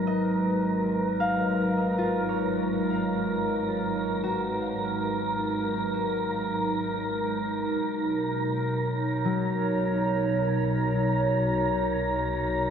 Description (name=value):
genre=ambient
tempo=free time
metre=none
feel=none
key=unclear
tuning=A4 = 444 Hz
part: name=warbly tape-like pad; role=sustained chords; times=0.0-12.7 s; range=B2 to C#5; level=-26 LUFS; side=equal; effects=chorus, built-in reverb
part: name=concert harp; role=arpeggios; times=0.0-12.7 s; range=F#3 to E#5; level=-32 LUFS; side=left 3 dB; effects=tape echo
part: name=dark studio double bass section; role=bass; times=0.0-12.7 s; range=G#1 to B1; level=-39 LUFS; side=equal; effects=none
part: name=wind-like tuned noise texture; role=texture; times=0.0-12.7 s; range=A#5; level=-32 LUFS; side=right 3 dB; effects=built-in reverb
room=wet huge ambient reverb, RT60 8.6 s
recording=in a vast, echoing space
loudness=-24 LUFS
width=side -7 dB against mid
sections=0.0-12.7 A section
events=fade-in on double bass section 0.0-12.7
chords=0.0 G#m9; 7.8 Bmaj7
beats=free time